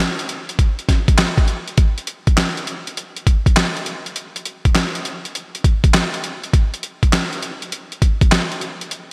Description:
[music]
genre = R&B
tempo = 101 BPM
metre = 4/4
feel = swing 66% on 16ths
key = none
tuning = none
[part]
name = boom bap sampler-style drum kit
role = drums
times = 0.0-9.1 s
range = handclaps, hi-hat, kick drum, snare drum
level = -18 LUFS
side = equal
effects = gated reverb
[sound]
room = light reverb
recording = bright 1980s-style digital production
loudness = -19 LUFS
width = mono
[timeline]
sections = 0.0-9.1 A section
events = none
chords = none

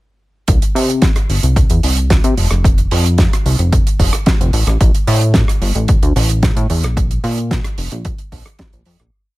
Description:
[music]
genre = nu-disco, nu disco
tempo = 111 BPM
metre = 4/4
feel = straight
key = unclear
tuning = A4 = 440 Hz
[part]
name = chorused synth bass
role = bass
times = 0.5-9.1 s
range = F1 to C3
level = -15 LUFS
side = equal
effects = none
[part]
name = damped 70s drum kit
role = drums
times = 0.5-9.1 s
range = hi-hat, rim click, snare drum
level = -19 LUFS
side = right 2 dB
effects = small room reverb
[part]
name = electronic kick drum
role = drums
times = 0.5-8.7 s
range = none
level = -14 LUFS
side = equal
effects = small room reverb
[sound]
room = little or no reverb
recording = none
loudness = -12 LUFS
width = side -19 dB against mid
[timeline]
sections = 0.5-9.1 drop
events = drop 0.5-9.1; fade-out 6.2-9.1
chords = none

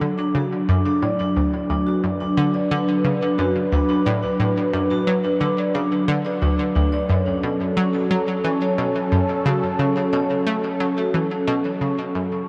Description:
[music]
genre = ambient, sequencer-driven space music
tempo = 89 BPM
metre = 4/4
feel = straight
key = unclear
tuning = A4 = 440 Hz
[part]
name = sweeping resonant pad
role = sustained chords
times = 0.0-12.4 s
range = F#3 to B4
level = -25 LUFS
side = equal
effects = subtle chorus
[part]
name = analog pluck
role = riff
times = 0.0-12.4 s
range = D2 to A3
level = -25 LUFS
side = equal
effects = chorus, delay
[part]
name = vibraphone with soft mallets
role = arpeggios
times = 0.2-12.4 s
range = C#4 to D5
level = -27 LUFS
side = equal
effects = delay
[sound]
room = wet huge ambient reverb, RT60 9.4 s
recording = dark, warm production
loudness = -21 LUFS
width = mono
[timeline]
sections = 0.0-12.5 A section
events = fade-out 10.7-12.5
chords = 0.0 D; 7.1 F#m

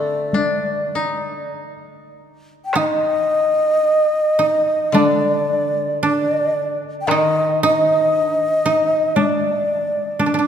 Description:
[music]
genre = japanese traditional, Japanese chamber music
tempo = 47-58 BPM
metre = 4/4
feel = rubato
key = unclear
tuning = A4 = 440 Hz
[part]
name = hollow long shakuhachi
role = melody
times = 0.0-10.5 s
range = D5 to G5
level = -18 LUFS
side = equal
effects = none
[part]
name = koto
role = second line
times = 0.0-10.5 s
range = C4 to Eb4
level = -22 LUFS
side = right 3 dB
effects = none
[part]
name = koto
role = accompaniment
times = 0.0-10.2 s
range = D3 to Eb4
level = -26 LUFS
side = left 4 dB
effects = none
[part]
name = taiko ensemble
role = percussion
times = 0.3-10.4 s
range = none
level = -24 LUFS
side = left 3 dB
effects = none
[sound]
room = wet church reverb, RT60 3.2 s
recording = minimal, uncompressed stereo recording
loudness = -16 LUFS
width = side -8 dB against mid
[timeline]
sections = 0.0-2.7 A section; 2.7-10.5 B section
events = none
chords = none

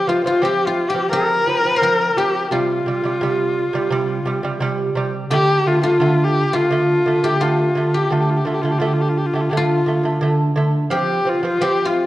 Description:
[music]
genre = mongolian traditional, Mongolian folk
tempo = 86 BPM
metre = 4/4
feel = straight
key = F zhi mode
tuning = A4 = 440 Hz
[part]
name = bright horsehead fiddle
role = melody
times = 0.0-12.1 s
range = F4 to Bb4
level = -19 LUFS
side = left 1 dB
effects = none
[part]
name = guzheng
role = second line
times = 0.0-12.1 s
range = F4 to C5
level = -24 LUFS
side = left 2 dB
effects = none
[part]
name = lute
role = arpeggios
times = 0.1-12.0 s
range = C3 to C4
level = -20 LUFS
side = right 2 dB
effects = none
[sound]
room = wet recital hall reverb, RT60 1.5 s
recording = worn, warbling old tape, cassette tape, warbly pitch drift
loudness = -16 LUFS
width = side -15 dB against mid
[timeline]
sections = 0.0-12.1 A section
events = none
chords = 0.0 F5; 2.5 C5; 5.3 D5; 10.9 F5

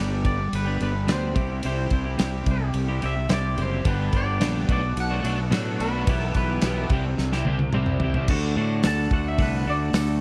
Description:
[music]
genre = indie rock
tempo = 108 BPM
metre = 4/4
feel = straight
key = D mixolydian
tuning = A4 = 440 Hz
[part]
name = twangy electric guitar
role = melody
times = 0.0-10.2 s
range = G4 to A5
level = -34 LUFS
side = equal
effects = subtle chorus, slapback echo
[part]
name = twelve-string electric guitar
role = riff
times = 0.0-10.2 s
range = G2 to A4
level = -30 LUFS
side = equal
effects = spring reverb
[part]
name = fuzz fingered electric bass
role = bass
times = 0.0-10.2 s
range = F#1 to A2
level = -29 LUFS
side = equal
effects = overdrive
[part]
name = loose indie drum kit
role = drums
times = 0.2-10.1 s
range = crash cymbal, hi-hat, kick drum, ride cymbal, snare drum, toms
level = -29 LUFS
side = equal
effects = none
[part]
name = overdriven electric guitar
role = riff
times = 3.8-8.3 s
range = G2 to E4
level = -36 LUFS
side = equal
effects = ensemble chorus, slapback echo
[part]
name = tambourine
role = percussion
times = 8.8-10.1 s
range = none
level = -45 LUFS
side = equal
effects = none
[sound]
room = small room ambience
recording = dark, warm production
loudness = -24 LUFS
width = mono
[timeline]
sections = 0.0-8.3 A section; 8.3-10.2 B section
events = drum fill 7.2-8.3; clean electric guitar solo 8.3-10.2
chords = 0.0 G; 1.4 C; 3.9 G; 4.7 Bm7; 6.1 Em/B; 6.9 C; 8.3 D

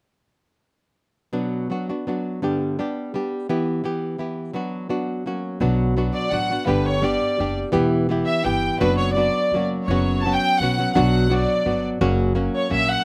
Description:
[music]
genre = mexican folk, mariachi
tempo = 169 BPM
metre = 3/4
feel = swing 54% on 8ths, rubato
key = B minor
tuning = A4 = 440 Hz
[part]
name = nylon-string guitar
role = accompaniment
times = 1.3-13.0 s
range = F#2 to G4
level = -24 LUFS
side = equal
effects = none
[part]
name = upright bass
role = bass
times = 5.6-12.9 s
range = E1 to B1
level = -27 LUFS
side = equal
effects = none
[part]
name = clear chamber violin section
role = melody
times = 6.1-13.0 s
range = B4 to A5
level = -24 LUFS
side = equal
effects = slapback echo
[sound]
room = little or no reverb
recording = recorded outdoors, with no room sound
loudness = -22 LUFS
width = mono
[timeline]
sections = 1.3-5.6 A section; 5.6-13.0 B section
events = none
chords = 1.3 Bm; 2.4 G; 3.5 Em; 4.5 Bm/F#; 5.3 F#; 5.6 Bm; 6.7 G; 7.7 Em; 8.8 Bm/F#; 9.5 F#; 9.9 F#sus4; 11.0 Bm; 12.0 F#

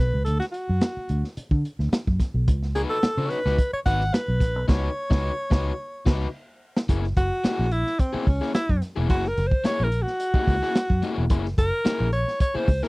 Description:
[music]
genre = funk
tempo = 109 BPM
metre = 4/4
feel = straight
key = F# mixolydian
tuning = A4 = 440 Hz
[part]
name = bright alto saxophone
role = melody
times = 0.0-12.9 s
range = B#3 to F#5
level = -26 LUFS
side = equal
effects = none
[part]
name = vintage muted fingered electric bass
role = bass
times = 0.0-12.8 s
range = E1 to D3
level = -25 LUFS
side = equal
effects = none
[part]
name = crunchy breakbeat drum kit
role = drums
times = 0.3-12.9 s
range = crash cymbal, hi-hat, kick drum, snare drum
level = -22 LUFS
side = equal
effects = none
[part]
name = crunchy overdriven guitar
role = accompaniment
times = 2.8-12.9 s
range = A#3 to C#5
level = -30 LUFS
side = left 4 dB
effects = none
[sound]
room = little or no reverb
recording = dry, close 1970s-style studio recording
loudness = -21 LUFS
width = side -24 dB against mid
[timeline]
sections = 0.0-6.9 A section; 6.9-12.9 B section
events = break 0.0-2.5; band accent 4.7-6.9; drum fill 5.8-6.9; alto saxophone solo 6.9-12.9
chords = 0.0 D; 2.5 C#9sus4; 6.9 F#9

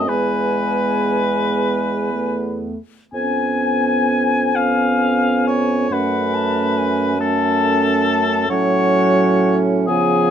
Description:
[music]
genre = classical, slow romantic movement for wind quintet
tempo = 38-48 BPM (dotted quarters)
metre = 6/8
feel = rubato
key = F# minor from 3.1 s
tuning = A4 = 442 Hz
[part]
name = hollow concert flute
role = melody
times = 0.0-10.3 s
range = F#5 to A5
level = -24 LUFS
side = left 12 dB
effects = none
[part]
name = warm oboe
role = second line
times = 0.0-10.3 s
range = G#4 to G#5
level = -20 LUFS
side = left 2 dB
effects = none
[part]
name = mellow French horn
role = accompaniment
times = 0.0-10.3 s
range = E#3 to B3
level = -22 LUFS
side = equal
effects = none
[part]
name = warm clarinet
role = accompaniment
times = 0.0-10.3 s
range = B3 to C#4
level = -24 LUFS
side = right 9 dB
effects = none
[part]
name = mellow bassoon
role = bass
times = 0.0-10.3 s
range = E2 to C#3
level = -22 LUFS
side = right 2 dB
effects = none
[sound]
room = little or no reverb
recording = close, detailed microphones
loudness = -15 LUFS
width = side -8 dB against mid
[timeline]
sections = 0.0-10.3 A section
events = none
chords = 0.1 E; 3.1 C#7/E#; 5.9 F#m; 8.5 F#m/A

